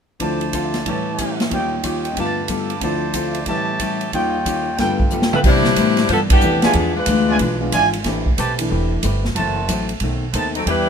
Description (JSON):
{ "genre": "jazz, big band swing", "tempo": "184 BPM", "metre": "4/4", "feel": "swing 64% on 8ths", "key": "C major", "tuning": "A4 = 439 Hz", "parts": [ { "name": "vintage hollow-body jazz guitar", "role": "accompaniment", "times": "0.2-10.9 s", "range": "F#2 to B4", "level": "-26 LUFS", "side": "left 3 dB", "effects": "none" }, { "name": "warm grand piano", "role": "accompaniment", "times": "0.2-10.9 s", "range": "D2 to A5", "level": "-25 LUFS", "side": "equal", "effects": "none" }, { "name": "warm trumpet section", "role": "stabs", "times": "0.2-10.9 s", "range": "D#4 to E6", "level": "-23 LUFS", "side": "right 2 dB", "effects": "none" }, { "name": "swinging big-band drum kit", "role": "drums", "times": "0.2-10.8 s", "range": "crash cymbal, hi-hat, kick drum, ride cymbal, snare drum, toms", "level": "-22 LUFS", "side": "right 1 dB", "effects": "none" }, { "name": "edgy saxophone section", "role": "melody", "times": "5.3-7.6, 10.6-10.9 s", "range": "E3 to C5", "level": "-18 LUFS", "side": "left 2 dB", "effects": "none" }, { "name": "upright bass", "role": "bass", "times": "5.4-10.9 s", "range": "E1 to C3", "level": "-21 LUFS", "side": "left 1 dB", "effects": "none" } ], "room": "light reverb", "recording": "minimal, uncompressed stereo recording", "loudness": "-16 LUFS", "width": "side -7 dB against mid", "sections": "0.2-5.4 A section; 5.4-10.9 B section", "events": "drum fill 5.1-5.4; band accent 6.3", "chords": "0.2 Dm7; 0.9 A7; 1.5 Eb9; 2.2 G9; 2.8 Dm7; 3.5 A7; 4.1 Eb9; 4.8 G9; 5.4 Cmaj9; 6.7 E7b9; 8.1 Am9; 9.4 F#m7b5; 10.0 B7b9" }